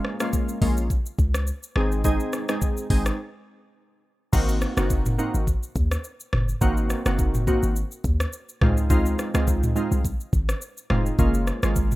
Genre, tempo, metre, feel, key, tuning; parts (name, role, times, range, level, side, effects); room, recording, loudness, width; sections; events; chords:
afrobeats; 105 BPM; 4/4; swing 55% on 16ths; Ab mixolydian; A4 = 439 Hz
glassy digital keys; accompaniment; 0.0-12.0 s; Ab3 to Ab4; -26 LUFS; right 1 dB; chorus
afro-pop drum kit; drums; 0.0-12.0 s; crash cymbal, hi-hat, kick drum, rim click, shaker, toms; -25 LUFS; equal
warm 808-style bass; bass; 0.6-12.0 s; F1 to Eb2; -24 LUFS; equal
little or no reverb; rough home demo mix; -21 LUFS; side -18 dB against mid
0.0-4.3 A section; 4.3-12.0 B section
break 3.2-4.3
0.0 Gbmaj7 (rootless); 1.8 Ab; 4.3 Ab7; 8.6 Dbmaj9; 11.2 Gbmaj9